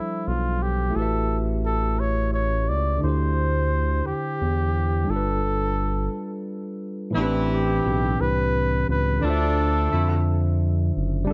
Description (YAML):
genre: slow six-eight R&B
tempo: 58 BPM (dotted quarters)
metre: 6/8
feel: straight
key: A minor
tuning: A4 = 440 Hz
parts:
  - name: warm flugelhorn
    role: melody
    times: 0.0-10.6 s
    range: E4 to D5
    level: -29 LUFS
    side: equal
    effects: none
  - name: barky tine electric piano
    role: accompaniment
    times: 0.0-11.3 s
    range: A2 to E5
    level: -30 LUFS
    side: equal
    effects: none
  - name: smooth synth bass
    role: bass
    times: 0.3-11.3 s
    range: F#1 to F2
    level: -26 LUFS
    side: equal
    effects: none
  - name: clear horn section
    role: stabs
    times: 7.1-10.2 s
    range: E3 to E4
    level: -33 LUFS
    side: equal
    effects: none
room: little or no reverb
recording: dark, warm production, nothing above 7.9 kHz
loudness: -23 LUFS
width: mono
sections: 0.0-7.2 A section; 7.2-11.3 B section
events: break 6.1-7.2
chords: 0.0 G9sus4; 0.9 A13; 3.0 D9sus4; 5.1 G9; 7.2 Am11; 9.2 Dm9